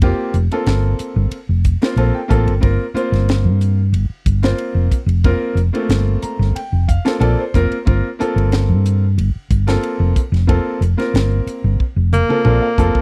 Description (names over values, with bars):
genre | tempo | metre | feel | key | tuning
electric jazz fusion | 92 BPM | 4/4 | straight | G minor | A4 = 440 Hz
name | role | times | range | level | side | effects
clear grand piano | accompaniment | 0.0-13.0 s | A3 to Bb5 | -23 LUFS | equal | none
hollow-body short-scale fingered electric bass | bass | 0.0-13.0 s | F1 to G2 | -17 LUFS | equal | none
tight funk drum kit | drums | 0.0-13.0 s | hi-hat, kick drum, ride cymbal, snare drum, toms | -21 LUFS | equal | none
warm tenor saxophone | melody | 12.1-13.0 s | Bb3 | -19 LUFS | equal | none
room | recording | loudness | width
little or no reverb | dry, close 1970s-style studio recording | -17 LUFS | mono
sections
0.0-13.0 A section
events
grand piano fill 1.7-2.6, 5.9-7.9, 12.1-13.0; drum fill 11.8-13.0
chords
0.0 Gm11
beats
| 0.02 0.67 1.33 1.98 | 2.63 3.29 3.94 4.59 | 5.25 5.90 6.55 7.21 | 7.86 8.52 9.17 9.82 | 10.48 11.13 11.79 12.44